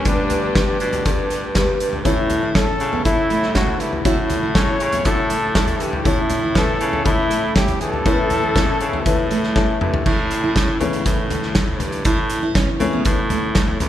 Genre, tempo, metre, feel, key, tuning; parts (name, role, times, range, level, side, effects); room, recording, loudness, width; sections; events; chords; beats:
piano-driven pop; 120 BPM; 4/4; straight; A4 = 440 Hz
mellow trumpet; melody; 0.0-9.5 s; D4 to C#5; -23 LUFS; left 2 dB
warm upright piano; accompaniment; 0.0-13.9 s; G2 to B4; -24 LUFS; left 4 dB
warm studio string section; sustained chords; 0.0-13.9 s; C#3 to G4; -33 LUFS; equal
clear baritone saxophone; bass; 0.0-13.9 s; C#2 to C#3; -24 LUFS; equal
loose indie drum kit; drums; 0.1-13.9 s; crash cymbal, hi-hat, kick drum, snare drum, toms; -20 LUFS; equal
picked steel-string acoustic guitar; riff; 2.1-13.5 s; A3 to E4; -26 LUFS; right 3 dB
moderate church reverb, RT60 2.9 s; recorded in a church or concert hall; -16 LUFS; side -12 dB against mid
0.0-10.1 A section; 10.1-13.9 B section
drum fill 9.6-10.1
0.0 Gadd9; 2.1 A
| 0.06 0.56 1.06 1.56 | 2.06 2.56 3.06 3.56 | 4.06 4.56 5.06 5.56 | 6.06 6.56 7.06 7.56 | 8.06 8.56 9.06 9.56 | 10.06 10.56 11.06 11.56 | 12.06 12.56 13.06 13.56